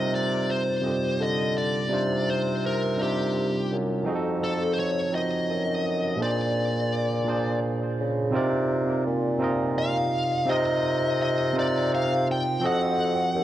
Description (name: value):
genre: slow six-eight R&B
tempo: 56 BPM (dotted quarters)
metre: 6/8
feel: straight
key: C minor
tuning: A4 = 440 Hz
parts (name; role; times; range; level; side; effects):
- smooth overdriven lead guitar; melody; 0.0-13.4 s; G4 to G5; -28 LUFS; left 1 dB; analog delay
- barky tine electric piano; accompaniment; 0.0-13.4 s; Bb2 to Eb5; -26 LUFS; right 2 dB; analog delay
- mellow bassoon; bass; 0.0-13.4 s; Eb2 to D3; -28 LUFS; left 1 dB; none
room: light reverb, small room ambience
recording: echo-heavy mix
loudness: -23 LUFS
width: side -12 dB against mid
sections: 0.0-8.3 A section; 8.3-13.4 B section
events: none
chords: 0.0 Cm11; 4.0 F7b9; 6.2 Bb7; 8.3 Cm11; 12.6 F7b9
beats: 0.83 | 1.90 2.97 | 4.04 5.12 | 6.19 7.26 | 8.33 9.40 | 10.47 11.54 | 12.62